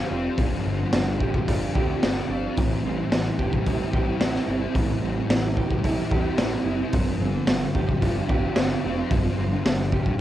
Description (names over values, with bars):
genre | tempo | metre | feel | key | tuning
rock, shoegaze and dream pop | 110 BPM | 4/4 | straight | unclear | A4 = 440 Hz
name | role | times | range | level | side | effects
clean electric guitar | arpeggios | 0.0-10.2 s | E3 to G4 | -33 LUFS | right 6 dB | lush chorus, analog delay
electric guitar through a small old amp | riff | 0.0-10.2 s | G2 to G4 | -30 LUFS | right 8 dB | reverse reverb
thick fuzz guitar | riff | 0.0-10.2 s | G2 to F4 | -27 LUFS | left 4 dB | distortion, ensemble chorus
growling picked electric bass | bass | 0.1-10.2 s | F1 to E2 | -31 LUFS | equal | overdrive
raw garage drum kit | drums | 0.4-10.2 s | hi-hat, kick drum, snare drum | -25 LUFS | equal | none
room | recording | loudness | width
light reverb | home recording on cassette | -21 LUFS | side -13 dB against mid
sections
0.0-10.2 A section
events
none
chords
0.0 G7sus4; 2.6 Am7; 6.9 G7sus4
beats
| 0.39 0.93 1.48 2.02 | 2.57 3.12 3.66 4.21 | 4.75 5.30 5.84 6.39 | 6.93 7.48 8.02 8.57 | 9.11 9.66 10.20